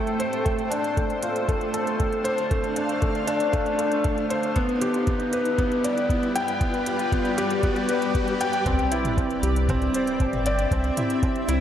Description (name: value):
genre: piano and strings electronica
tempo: 117 BPM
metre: 4/4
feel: straight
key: C major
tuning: A4 = 440 Hz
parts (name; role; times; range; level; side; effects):
- granular cloud pad; sustained chords; 0.0-11.6 s; G3 to G5; -29 LUFS; left 1 dB; built-in reverb, lush chorus, sidechain pumping
- felt-muted upright piano; riff; 0.0-11.6 s; A3 to G5; -24 LUFS; equal; tape echo
- riser and sub drop; sound effects; 0.9-10.7 s; none; -35 LUFS; left 1 dB; none
- organic electronic drum kit; drums; 0.1-11.6 s; hi-hat, toms; -34 LUFS; equal; none
- electronic kick drum; drums; 0.5-11.3 s; none; -26 LUFS; equal; none
- round analog bass; bass; 8.7-11.6 s; G1 to C2; -25 LUFS; equal; sidechain pumping
room: wet lush hall reverb, RT60 1.8 s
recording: dreamy mix soaked in reverb, lossy compression artefacts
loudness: -21 LUFS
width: side -10 dB against mid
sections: 0.0-8.7 A section; 8.7-11.6 B section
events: build-up 0.0-8.7; riser 0.9-8.7; drop 8.7-11.6; impact 8.7-10.7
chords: 0.5 Dm7; 4.6 G; 8.7 Cadd9